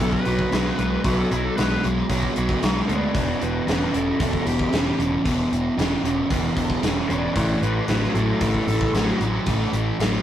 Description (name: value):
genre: classic rock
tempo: 114 BPM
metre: 4/4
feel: straight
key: E minor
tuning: A4 = 440 Hz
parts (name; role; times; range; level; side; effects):
- bluesy overdriven lead guitar; melody; 0.0-9.2 s; E4 to D5; -28 LUFS; left 2 dB; distortion
- sludgy distorted guitar; riff; 0.0-10.2 s; E2 to G#3; -23 LUFS; right 1 dB; overdrive
- growling picked electric bass; bass; 0.0-10.2 s; E1 to D2; -26 LUFS; equal; overdrive
- gated 80s drum kit; drums; 0.1-10.1 s; hi-hat, kick drum, snare drum; -26 LUFS; equal; none
room: moderate studio reverb, RT60 0.5 s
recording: rough rehearsal-room recording, tube saturation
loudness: -20 LUFS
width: side -11 dB against mid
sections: 0.0-10.2 A section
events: lead electric guitar solo 0.0-10.2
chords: 0.0 B5; 3.1 Em; 7.4 A5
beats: 0.52 | 1.04 1.57 2.09 2.62 | 3.15 3.67 4.20 4.72 | 5.25 5.78 6.30 6.83 | 7.36 7.88 8.41 8.94 | 9.46 9.99